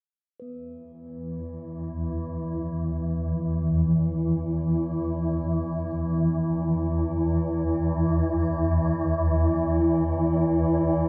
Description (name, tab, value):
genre	dark ambient drone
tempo	free time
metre	none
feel	none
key	unclear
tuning	A4 = 439 Hz
part	swarming drone	drone	1.2-11.1 s	E2 to E3	-25 LUFS	equal	built-in reverb
part	bronze singing bowl	texture	0.4-11.1 s	B3 to B4	-44 LUFS	equal	none
room	wet cathedral reverb, RT60 5.7 s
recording	none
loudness	-25 LUFS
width	mono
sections	0.4-11.1 A section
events	fade-in on singing bowl 0.4-11.1; filter sweep on synth drone 0.4-11.1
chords	0.4 E5